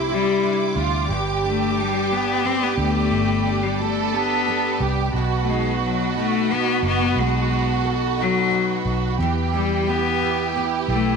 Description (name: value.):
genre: six-eight pop ballad.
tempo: 59 BPM (dotted quarters).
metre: 6/8.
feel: straight.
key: unclear.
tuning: A4 = 440 Hz.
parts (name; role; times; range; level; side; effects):
warm studio violin section; second line; 0.0-11.2 s; E4 to A4; -25 LUFS; right 11 dB; none.
fingerpicked steel-string acoustic guitar; accompaniment; 0.0-11.2 s; G2 to A4; -27 LUFS; right 1 dB; double-tracked left and right.
warm studio string section; sustained chords; 0.0-11.2 s; E4 to D6; -30 LUFS; right 1 dB; none.
vintage muted fingered electric bass; bass; 0.0-11.2 s; F#1 to E2; -26 LUFS; right 1 dB; none.
clear cello; melody; 0.1-11.2 s; F#3 to C4; -23 LUFS; left 10 dB; none.
room: moderate echo chamber reverb, RT60 2.3 s.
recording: 1960s-style stereo with parts hard left and right.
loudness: -19 LUFS.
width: side -5 dB against mid.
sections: 0.0-11.2 A section.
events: none.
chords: 0.0 Cadd9; 1.1 G; 5.1 B7; 9.2 Em.